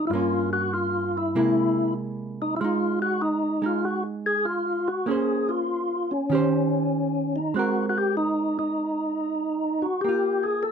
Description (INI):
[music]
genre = jazz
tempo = 97 BPM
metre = 4/4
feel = swing 68% on 8ths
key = unclear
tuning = A4 = 441 Hz
[part]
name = percussive tonewheel organ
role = melody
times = 0.0-10.7 s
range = Db4 to A4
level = -24 LUFS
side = left 2 dB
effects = overdrive, chorus vibrato, slow rotary speaker
[part]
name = hollow-body jazz guitar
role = accompaniment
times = 0.0-10.7 s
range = G2 to C5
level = -27 LUFS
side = right 4 dB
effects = none
[sound]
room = moderate studio ambience, RT60 0.5 s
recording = none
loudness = -22 LUFS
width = side -7 dB against mid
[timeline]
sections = 0.0-10.7 A section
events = none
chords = 0.1 Gdim; 1.4 C7b13; 2.6 Fm7/Ab; 5.1 Bbm9; 6.3 Eb6; 7.6 Abadd9; 10.0 Gm9/Bb